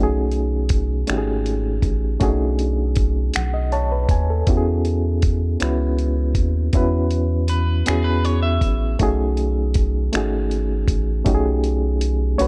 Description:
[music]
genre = slow six-eight R&B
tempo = 53 BPM (dotted quarters)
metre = 6/8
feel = straight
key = unclear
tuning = A4 = 444 Hz
[part]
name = reed electric piano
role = accompaniment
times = 0.0-12.5 s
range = A3 to A5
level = -25 LUFS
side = equal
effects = fast tremolo
[part]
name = rubbery square bass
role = bass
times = 0.0-12.5 s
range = G#1 to E2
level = -23 LUFS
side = equal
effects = none
[part]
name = dusty soul sampler-style drum kit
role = drums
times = 0.3-12.5 s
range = finger snaps, hi-hat, kick drum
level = -24 LUFS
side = equal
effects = none
[part]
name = electric guitar at the edge of break-up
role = second line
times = 7.5-9.0 s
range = G#4 to E5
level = -29 LUFS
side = equal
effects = spring reverb
[sound]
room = digital ambience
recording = dark, warm production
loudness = -20 LUFS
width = mono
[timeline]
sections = 0.0-12.5 A section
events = reed electric piano fill 3.3-4.5; drum fill 11.3-12.5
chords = 0.0 B13; 4.5 E69; 9.0 B13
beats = 1.07 | 2.21 3.34 | 4.47 5.60 | 6.73 7.87 | 9.00 10.13 | 11.26 12.39

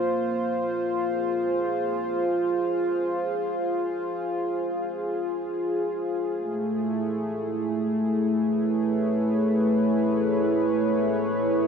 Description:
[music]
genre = ambient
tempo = free time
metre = none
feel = none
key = unclear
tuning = A4 = 440 Hz
[part]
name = warm analog pad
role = solo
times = 0.0-11.7 s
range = A3 to C#5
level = -23 LUFS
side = equal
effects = chorus, tape echo
[sound]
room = wet huge ambient reverb, RT60 7.7 s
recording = dark, warm production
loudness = -23 LUFS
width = side -6 dB against mid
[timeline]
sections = 0.0-11.7 A section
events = none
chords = 0.0 Fm; 6.4 Amaj7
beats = free time

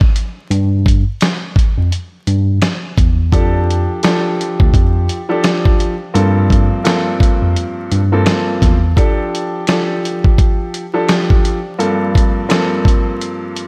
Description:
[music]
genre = hip hop, boom-bap hip-hop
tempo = 85 BPM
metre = 4/4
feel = swing 60% on 16ths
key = F major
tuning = A4 = 440 Hz
[part]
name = dusty soul sampler-style drum kit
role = drums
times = 0.0-13.7 s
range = hi-hat, kick drum, snare drum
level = -16 LUFS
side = equal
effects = vintage 12-bit sampler grit
[part]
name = mellow tine electric piano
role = bass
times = 0.5-8.9 s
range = D2 to G2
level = -17 LUFS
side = equal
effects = none
[part]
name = warm upright piano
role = accompaniment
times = 3.3-13.6 s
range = G2 to A4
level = -20 LUFS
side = equal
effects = high-pass filter, low-pass filter
[sound]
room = light reverb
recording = vinyl crackle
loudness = -15 LUFS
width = mono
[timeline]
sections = 0.0-13.7 A section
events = break 0.0-3.3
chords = 0.5 Em; 3.3 F69; 6.1 Gm11; 9.0 F69; 11.8 Gm11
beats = | 0.50 1.21 1.91 2.62 | 3.32 4.03 4.73 5.44 | 6.15 6.85 7.56 8.26 | 8.97 9.68 10.38 11.09 | 11.79 12.50 13.21

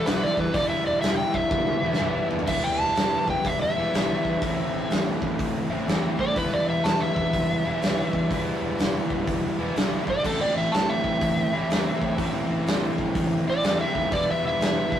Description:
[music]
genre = blues rock power trio and southern rock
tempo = 124 BPM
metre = 4/4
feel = swing 65% on 8ths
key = E minor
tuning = A4 = 443 Hz
[part]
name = overdriven slide guitar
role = melody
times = 0.0-15.0 s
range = A4 to A5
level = -26 LUFS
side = equal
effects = none
[part]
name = overdriven electric guitar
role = riff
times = 0.0-15.0 s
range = A2 to E4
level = -26 LUFS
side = equal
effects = none
[part]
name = fuzz picked electric bass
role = bass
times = 0.1-15.0 s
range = E1 to A2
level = -33 LUFS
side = equal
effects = overdrive
[part]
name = big rock drum kit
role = drums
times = 0.1-15.0 s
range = crash cymbal, hi-hat, kick drum, snare drum, toms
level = -28 LUFS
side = equal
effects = none
[sound]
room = moderate studio reverb, RT60 0.5 s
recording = rough rehearsal-room recording, warm saturation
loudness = -22 LUFS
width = side -10 dB against mid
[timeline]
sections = 0.0-2.5 A section; 2.5-15.0 A section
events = electric slide guitar solo 0.0-15.0; drum fill 1.5-2.5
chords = 0.0 Em; 4.4 Am; 6.4 Em; 10.3 Am; 14.1 Em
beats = 0.06 | 0.55 1.03 1.52 2.00 | 2.48 2.97 3.46 3.94 | 4.43 4.91 5.40 5.88 | 6.37 6.85 7.34 7.83 | 8.31 8.79 9.28 9.77 | 10.25 10.74 11.22 11.71 | 12.19 12.68 13.16 13.64 | 14.13 14.61

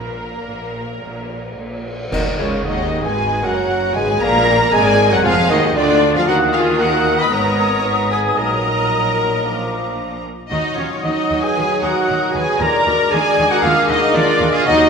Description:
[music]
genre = classical, dramatic, fast romantic movement for symphony orchestra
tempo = 115 BPM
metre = 4/4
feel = straight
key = Eb minor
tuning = A4 = 441 Hz
[part]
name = rich studio violin section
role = melody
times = 0.0-14.9 s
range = Bb4 to Cb6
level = -23 LUFS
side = left 4 dB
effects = none
[part]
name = warm symphonic violin section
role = second line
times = 0.0-14.9 s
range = Bb3 to Eb5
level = -25 LUFS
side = left 2 dB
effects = none
[part]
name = rich symphonic viola section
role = accompaniment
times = 0.0-14.9 s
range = Db4 to Cb5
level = -22 LUFS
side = right 1 dB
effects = none
[part]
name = rich symphonic cello section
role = bass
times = 0.0-14.9 s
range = Db2 to Eb3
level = -25 LUFS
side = right 2 dB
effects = none
[part]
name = rich symphonic double bass section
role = bass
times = 0.0-14.9 s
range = F1 to Eb2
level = -27 LUFS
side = right 2 dB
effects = none
[part]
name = flute section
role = second line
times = 2.1-14.9 s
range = Db5 to Eb6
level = -24 LUFS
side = left 4 dB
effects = none
[part]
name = mellow clarinet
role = second line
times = 2.1-14.9 s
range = F4 to Db5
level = -25 LUFS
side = left 1 dB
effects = none
[part]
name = mellow bassoon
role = accompaniment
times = 2.1-14.9 s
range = Db3 to Cb4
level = -25 LUFS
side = equal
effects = none
[part]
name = mellow French horn section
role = sustained chords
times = 2.1-14.9 s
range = Db3 to Eb4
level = -25 LUFS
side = left 2 dB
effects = none
[part]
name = dark trumpet section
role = stabs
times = 2.1-14.9 s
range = Db5 to Cb6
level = -21 LUFS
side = right 3 dB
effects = none
[part]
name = clash cymbals and concert bass drum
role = percussion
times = 2.1-3.1 s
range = none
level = -29 LUFS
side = equal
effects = none
[sound]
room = wet scoring stage reverb, RT60 1.5 s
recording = none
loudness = -14 LUFS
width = side -6 dB against mid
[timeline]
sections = 0.0-2.1 A section; 2.1-14.9 B section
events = band accent 2.1-2.6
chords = 0.0 N.C.; 2.1 Ebm; 4.2 Bb7; 6.3 Ebm; 7.3 Abm; 8.4 Ebm/Bb; 9.4 Bb; 10.5 Ebm; 12.6 Bb7/Eb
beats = 0.45 1.01 1.57 | 2.12 2.65 3.17 3.69 | 4.22 4.74 5.25 5.77 | 6.29 6.80 7.32 7.85 | 8.38 8.92 9.45 9.98 | 10.51 11.04 11.57 12.09 | 12.61 13.12 13.63 14.15 | 14.66

